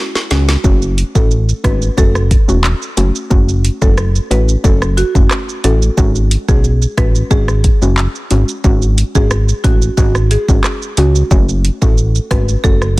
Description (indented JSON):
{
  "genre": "dancehall",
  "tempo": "90 BPM",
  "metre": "4/4",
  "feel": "straight",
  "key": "F# minor",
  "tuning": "A4 = 440 Hz",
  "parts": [
    { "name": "soft round pluck", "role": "accompaniment", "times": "0.0-13.0 s", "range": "G#3 to F#4", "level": "-20 LUFS", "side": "left 2 dB", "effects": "chorus" },
    { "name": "afro-pop drum kit", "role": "drums", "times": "0.2-13.0 s", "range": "handclaps, hi-hat, kick drum, rim click, shaker, snare drum", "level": "-14 LUFS", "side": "equal", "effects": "none" },
    { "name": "buzzing marimba with medium mallets", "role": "melody", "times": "0.3-13.0 s", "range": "F#4 to B4", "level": "-22 LUFS", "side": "right 1 dB", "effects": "tape echo" },
    { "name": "plucky analog bass", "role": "bass", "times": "0.3-13.0 s", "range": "E1 to C#2", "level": "-13 LUFS", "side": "equal", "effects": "none" }
  ],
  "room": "little or no reverb",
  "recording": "dense, heavily limited modern master",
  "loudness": "-10 LUFS",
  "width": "side -20 dB against mid",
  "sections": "0.6-13.0 A section",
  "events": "drum fill 0.0-0.6",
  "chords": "0.0 C#sus4; 0.6 F#m; 6.0 C#sus4; 11.3 F#m"
}